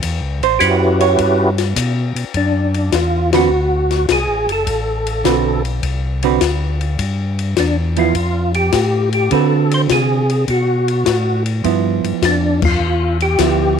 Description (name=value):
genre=soul jazz organ trio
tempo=103 BPM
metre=4/4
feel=swing 69% on 8ths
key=D mixolydian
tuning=A4 = 439 Hz
part: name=mellow tonewheel organ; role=bass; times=0.0-13.8 s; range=F#1 to D3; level=-18 LUFS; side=left 1 dB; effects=overdrive, chorus vibrato, slow rotary speaker
part: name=compact cocktail drum kit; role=drums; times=0.0-13.6 s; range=crash cymbal, hi-hat, kick drum, ride cymbal, snare drum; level=-21 LUFS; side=left 9 dB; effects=none
part: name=hollow-body jazz guitar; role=accompaniment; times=0.4-13.8 s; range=D3 to C#5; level=-18 LUFS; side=right 13 dB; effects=none
part: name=percussive tonewheel organ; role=melody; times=0.6-13.8 s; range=C#4 to C5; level=-17 LUFS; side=equal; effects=slow rotary speaker, chorus vibrato
room=light reverb, small room ambience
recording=1960s-style stereo with parts hard left and right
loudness=-14 LUFS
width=side -7 dB against mid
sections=0.0-2.3 A section; 2.3-13.8 B section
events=hollow-body jazz guitar solo 0.0-2.3; band accent 3.2, 12.5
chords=0.0 A13; 2.3 D13; 7.0 G7sus2; 9.3 D6; 11.6 G13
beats=| 0.02 0.60 1.18 1.76 | 2.34 2.92 3.50 4.08 | 4.66 5.24 5.83 6.41 | 6.99 7.57 8.15 8.73 | 9.31 9.89 10.47 11.06 | 11.64 12.22 12.80 13.38